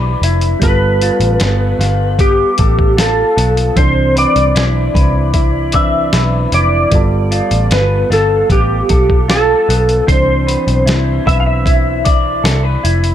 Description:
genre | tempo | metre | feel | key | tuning
indie pop, bedroom pop | 76 BPM | 4/4 | straight | C major | A4 = 443 Hz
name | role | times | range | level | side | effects
clean lap steel guitar | melody | 0.0-12.6 s | G4 to F5 | -15 LUFS | equal | ensemble chorus
electric guitar through a small old amp | accompaniment | 0.0-13.1 s | G3 to D5 | -20 LUFS | left 1 dB | wide subtle chorus, vibrato effect
soft electric-piano-like synth keys | accompaniment | 0.0-13.1 s | E3 to C5 | -22 LUFS | right 4 dB | chorus
vintage muted picked electric bass | bass | 0.0-13.1 s | F1 to C2 | -15 LUFS | equal | none
lo-fi sampler-style drum kit | drums | 0.2-13.1 s | hi-hat, kick drum, snare drum | -16 LUFS | equal | none
room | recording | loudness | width
light reverb, digital ambience | none | -10 LUFS | side -10 dB against mid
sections
0.0-13.1 A section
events
none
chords
0.0 Cmaj9; 0.6 G9; 3.8 Cmaj9; 6.9 G9; 10.1 Cmaj9

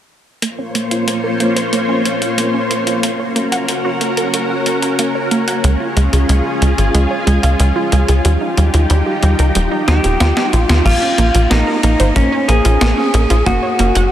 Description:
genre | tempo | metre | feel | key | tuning
synthwave | 92 BPM | 4/4 | straight | Bb minor | A4 = 436 Hz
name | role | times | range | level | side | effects
string machine, full ensemble | sustained chords | 0.6-10.8 s | Bb3 to Db5 | -18 LUFS | left 1 dB | ensemble chorus, sidechain pumping
wide unison pluck | arpeggios | 0.4-14.0 s | G3 to Gb5 | -20 LUFS | right 3 dB | cassette tape, tape echo
clean 12-bit digital drum machine | drums | 0.4-14.1 s | crash cymbal, hi-hat, snare drum | -20 LUFS | left 1 dB | none
tight sequencer bass | bass | 5.6-14.1 s | Eb1 to Eb2 | -13 LUFS | equal | sidechain pumping
lightly driven lead guitar | melody | 9.9-14.1 s | Db4 to Ab4 | -16 LUFS | equal | diffuse ambient delay
kick drum | drums | 10.9-13.6 s | none | -19 LUFS | equal | none
room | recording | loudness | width
moderate huge ambient reverb, RT60 7.5 s | dreamy mix soaked in reverb | -12 LUFS | side -11 dB against mid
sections
0.4-10.9 A section; 10.9-14.1 B section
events
filter sweep on synth arpeggio sound 0.4-10.9; drum fill 9.9-10.9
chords
0.4 Bbmadd9; 3.0 Gb; 5.6 Db; 8.2 Ebadd9; 10.9 Bbm; 13.5 Gb

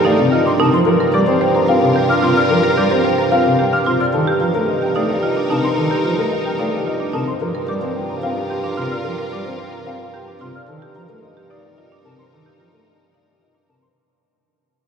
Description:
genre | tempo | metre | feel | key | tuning
classical, minimalist pattern music | 110 BPM | 3/4 | straight | unclear | A4 = 439 Hz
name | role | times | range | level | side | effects
warm studio string section | sustained chords | 0.0-13.8 s | Eb4 to Bb4 | -26 LUFS | equal | none
marimba with medium mallets | arpeggios | 0.0-13.7 s | D4 to C5 | -21 LUFS | right 4 dB | none
dark bassoon | bass | 0.0-13.8 s | G2 | -24 LUFS | right 1 dB | none
dark grand piano | melody | 0.1-14.0 s | G4 to G5 | -22 LUFS | left 4 dB | none
chamber organ, principal | accompaniment | 0.1-13.8 s | C3 to C4 | -21 LUFS | equal | none
mellow hollow silver concert flute | arpeggios | 0.1-13.9 s | F5 to F6 | -25 LUFS | left 2 dB | none
room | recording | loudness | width
wet cathedral reverb, RT60 7.4 s | recorded in a church or concert hall | -15 LUFS | side -6 dB against mid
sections
0.0-14.0 A section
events
fade-out 0.9-14.0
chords
0.0 Cm11/G; 0.9 Gm7; 4.1 Cm11/G; 7.4 Gm7; 10.7 Cm11/G

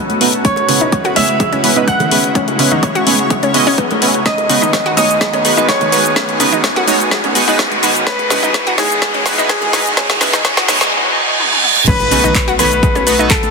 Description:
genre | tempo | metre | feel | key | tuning
progressive house | 126 BPM | 4/4 | straight | C# minor | A4 = 439 Hz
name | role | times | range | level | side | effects
clear grand piano | melody | 0.0-13.5 s | G#4 to F#5 | -20 LUFS | equal | ping-pong delay
glassy wavetable pluck | second line | 0.0-13.5 s | G#5 to F#6 | -23 LUFS | right 1 dB | chorus, sidechain pumping, ping-pong delay
lush unison pad | sustained chords | 0.0-13.5 s | D#2 to C#5 | -21 LUFS | equal | chorus, sidechain pumping
riser, reverse cymbal and impact | sound effects | 0.2-13.5 s | none | -20 LUFS | right 1 dB | none
deep house drum kit | drums | 0.1-13.5 s | crash cymbal, handclaps, hi-hat, shaker, snare drum, toms | -16 LUFS | left 2 dB | sidechain pumping on hats, sidechain pumping on perc, sidechain pumping on toms, sidechain pumping on cymbals
congas and bongos | percussion | 0.1-13.5 s | none | -25 LUFS | right 1 dB | sidechain pumping on perc
chorused polysynth | stabs | 0.2-13.3 s | G#3 to D#5 | -18 LUFS | right 3 dB | sidechain pumping, ping-pong delay
analog pluck | arpeggios | 0.4-13.3 s | C#3 to C#5 | -20 LUFS | left 1 dB | chorus, sidechain pumping, ping-pong delay
electronic kick drum | drums | 0.4-13.4 s | none | -17 LUFS | equal | high-pass filter on kick
tight sequencer bass | bass | 11.9-13.5 s | B1 | -23 LUFS | left 1 dB | sidechain pumping
room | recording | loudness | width
moderate huge ambient reverb, RT60 4.2 s | dense, heavily limited modern master, high-pass filter | -10 LUFS | side -4 dB against mid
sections
0.0-11.9 A section; 11.9-13.5 B section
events
build-up 0.0-11.9; filter sweep on analog polysynth 0.0-11.9; filter sweep 0.0-11.9; riser 0.2-10.9; drum fill 4.3-10.9, 11.4-11.9; reverse cymbal 10.9-11.9; drop 11.9-13.5; impact 11.9-13.5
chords
0.4 C#m7; 4.3 G#m7/D#; 8.1 Emaj7; 11.9 B7

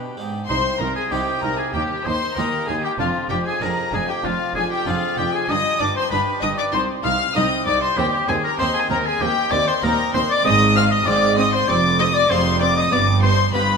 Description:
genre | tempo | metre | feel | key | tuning
classical, baroque-style concerto movement with solo episodes | 97 BPM | 4/4 | straight | C minor | A4 = 440 Hz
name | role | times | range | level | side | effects
clear oboe | melody | 0.0-13.8 s | F4 to F5 | -23 LUFS | equal | none
rich chamber violin section | melody | 0.0-13.8 s | F5 to F6 | -24 LUFS | left 4 dB | none
warm chamber violin section | second line | 0.0-13.6 s | F4 to F5 | -25 LUFS | left 4 dB | none
dark chamber viola section | accompaniment | 0.0-13.6 s | B3 to Eb4 | -29 LUFS | right 2 dB | none
harpsichord | accompaniment | 0.0-13.8 s | C2 to Ab4 | -30 LUFS | right 1 dB | none
warm chamber cello section | bass | 0.0-13.8 s | C2 to B2 | -24 LUFS | right 2 dB | none
rich chamber double bass section | bass | 0.5-13.8 s | F1 to Eb2 | -28 LUFS | right 4 dB | none
room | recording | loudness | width
moderate concert hall reverb, RT60 2.4 s | minimal, uncompressed stereo recording | -17 LUFS | side -5 dB against mid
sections
0.5-13.8 A section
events
none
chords
0.5 Cm; 1.7 Eb; 3.0 Ddim/F; 5.5 G5; 6.7 Cm; 8.0 Cm/Eb; 10.4 Ab; 11.7 Fm6; 12.9 G7

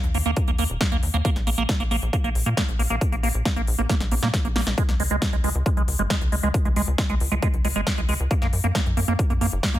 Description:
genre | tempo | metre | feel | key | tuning
uplifting trance | 136 BPM | 4/4 | straight | unclear | A4 = 439 Hz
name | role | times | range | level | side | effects
tight sequencer bass | bass | 0.0-9.8 s | Eb1 to Bb2 | -25 LUFS | equal | sidechain pumping
big-room dance drum kit | drums | 0.0-9.8 s | hi-hat, snare drum | -28 LUFS | left 1 dB | overdrive
liquid acid bass | arpeggios | 0.1-9.8 s | Ab3 to Bb3 | -27 LUFS | right 3 dB | phaser, sidechain pumping, ping-pong delay
electronic kick drum | drums | 0.4-9.7 s | none | -23 LUFS | equal | overdrive
room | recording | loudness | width
little or no reverb | none | -20 LUFS | side -13 dB against mid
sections
0.0-9.8 A section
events
drum fill 3.9-4.8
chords
0.0 Eb5; 1.2 N.C.; 4.8 Db5; 8.3 Gb

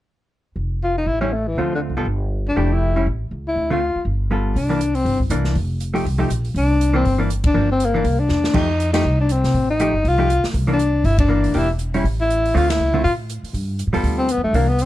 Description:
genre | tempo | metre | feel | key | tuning
jazz, small-group swing and bop | 240 BPM | 4/4 | swing 57% on 8ths | C mixolydian | A4 = 439 Hz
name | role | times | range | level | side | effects
upright bass | bass | 0.6-14.9 s | E1 to C3 | -21 LUFS | equal | none
breathy tenor saxophone | melody | 0.8-14.9 s | D3 to F4 | -20 LUFS | left 2 dB | none
hollow-body jazz guitar | accompaniment | 1.2-14.7 s | D3 to A4 | -22 LUFS | equal | none
open jazz drum kit | drums | 4.6-14.9 s | crash cymbal, hi-hat, kick drum, ride cymbal, snare drum | -25 LUFS | equal | none
room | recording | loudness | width
light reverb | dark, warm production | -17 LUFS | side -14 dB against mid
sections
0.6-4.6 A section; 4.6-14.9 B section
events
band accent 7.4, 8.9, 11.2, 12.7; drum fill 8.3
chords
0.6 N.C.; 1.1 A7; 1.6 Dm7; 2.1 G5; 2.6 Fmaj9; 3.1 A; 3.6 Dm7; 4.1 G9; 4.6 C9; 5.6 F9; 6.6 C9; 7.6 Gm7; 8.1 Cadd9; 8.5 F9; 10.5 C9; 11.5 Em7b5; 12.0 A5; 12.5 Dm7; 13.5 G9

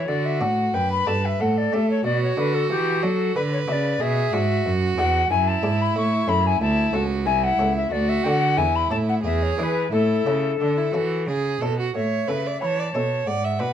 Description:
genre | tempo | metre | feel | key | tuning
classical, baroque-style sonata movement with continuo | 91 BPM | 3/4 | straight | A major from 4.0 s | A4 = 440 Hz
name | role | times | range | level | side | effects
alto recorder | melody | 0.0-13.7 s | G4 to C#6 | -24 LUFS | left 6 dB | none
clear violin | second line | 0.0-13.7 s | D4 to E5 | -26 LUFS | right 6 dB | none
buff-stop harpsichord | accompaniment | 0.0-13.7 s | C2 to B4 | -31 LUFS | left 1 dB | none
clear cello | bass | 0.0-13.7 s | C2 to A3 | -24 LUFS | right 1 dB | none
room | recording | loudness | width
light reverb | dark, warm production | -20 LUFS | side -9 dB against mid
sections
0.0-11.9 A section; 11.9-13.7 B section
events
none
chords
0.1 D; 1.4 A7; 2.0 Bm; 4.0 E7; 5.9 A; 7.9 Bm/D; 8.6 A/E; 9.2 E7; 9.9 A

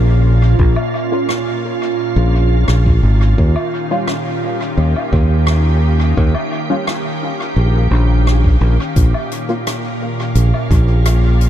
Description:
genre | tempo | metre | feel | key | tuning
ambient dub | 86 BPM | 4/4 | straight | Bb dorian | A4 = 440 Hz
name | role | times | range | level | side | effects
soft additive organ-like pad | sustained chords | 0.0-11.5 s | Bb2 to F5 | -19 LUFS | right 1 dB | ensemble chorus, built-in reverb
fingered electric bass | bass | 0.0-11.5 s | Ab1 to Eb2 | -12 LUFS | equal | tube saturation
electronic kick drum | drums | 0.6-10.8 s | none | -15 LUFS | equal | none
soft-mallet drum kit | drums | 0.8-11.5 s | hi-hat, rim click, woodblock | -26 LUFS | equal | dub echo
filtered dub chord stab | stabs | 1.1-9.7 s | G3 to F4 | -25 LUFS | left 1 dB | ensemble chorus, dub echo
room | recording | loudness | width
light reverb, studio ambience | none | -12 LUFS | side -11 dB against mid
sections
0.0-11.5 A section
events
none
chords
0.0 Bbm; 3.4 Eb7; 9.0 Bbm

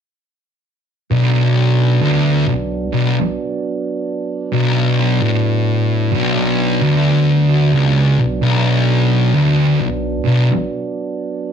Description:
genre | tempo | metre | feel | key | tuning
metal | 66 BPM | 4/4 | straight | B minor | A4 = 439 Hz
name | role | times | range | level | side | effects
mellow tonewheel organ | sustained chords | 1.1-11.5 s | F#3 to D4 | -23 LUFS | right 5 dB | slow rotary speaker, overdrive
thick fuzz guitar | riff | 1.1-10.5 s | B1 to A2 | -15 LUFS | left 5 dB | distortion
thick fuzz guitar | riff | 1.1-10.5 s | B1 to A2 | -18 LUFS | right 9 dB | distortion
room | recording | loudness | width
wet large studio reverb, RT60 0.8 s | none | -14 LUFS | side -8 dB against mid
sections
1.1-11.5 A section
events
none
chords
1.1 Bm

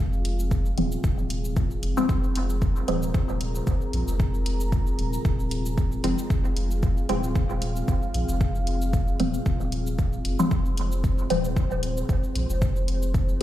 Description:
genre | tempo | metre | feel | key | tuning
dub techno | 114 BPM | 4/4 | swing 55% on 16ths | F minor | A4 = 440 Hz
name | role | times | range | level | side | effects
dark analog pad | sustained chords | 0.0-13.4 s | C4 to Bb5 | -32 LUFS | right 1 dB | chorus, sidechain pumping
filtered dub chord stab | stabs | 0.0-13.4 s | F3 to C4 | -29 LUFS | left 1 dB | phaser, sidechain pumping, dub echo
soft dub sub bass | bass | 0.0-13.4 s | Eb1 to Bb1 | -27 LUFS | equal | sidechain pumping
electronic shaker and hi-hat | drums | 0.1-13.4 s | none | -39 LUFS | left 1 dB | none
electronic kick drum | drums | 0.5-13.3 s | none | -24 LUFS | equal | none
room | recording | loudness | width
light reverb | played on a big sound system in a bare room, large studio reverb | -23 LUFS | side -13 dB against mid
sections
0.0-13.4 A section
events
none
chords
0.0 Fm

